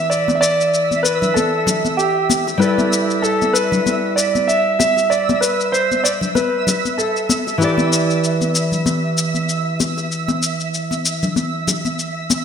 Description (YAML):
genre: sunset chillout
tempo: 96 BPM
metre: 4/4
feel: swing 56% on 16ths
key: E minor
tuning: A4 = 436 Hz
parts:
  - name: warm concert grand piano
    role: melody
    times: 0.0-7.4 s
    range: G4 to E5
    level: -17 LUFS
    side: right 1 dB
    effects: ping-pong delay
  - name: nylon-string guitar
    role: accompaniment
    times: 0.0-12.4 s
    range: E3 to D5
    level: -22 LUFS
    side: moving between left 2 dB and right 4 dB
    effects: auto-pan, ping-pong delay
  - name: twinkling granular texture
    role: texture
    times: 0.0-12.4 s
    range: E5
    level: -25 LUFS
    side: right 2 dB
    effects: built-in reverb, lush chorus
  - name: shaker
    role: drums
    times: 0.1-12.4 s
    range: none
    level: -23 LUFS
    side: left 4 dB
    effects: none
  - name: congas and bongos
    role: percussion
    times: 0.3-12.4 s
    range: none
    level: -23 LUFS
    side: left 3 dB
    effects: none
room: wet lush hall reverb, RT60 1.9 s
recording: bright 1980s-style digital production, faint mains hum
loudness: -15 LUFS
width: side -7 dB against mid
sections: 0.0-12.4 A section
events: none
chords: 0.0 Em7; 2.6 G69; 7.6 Em7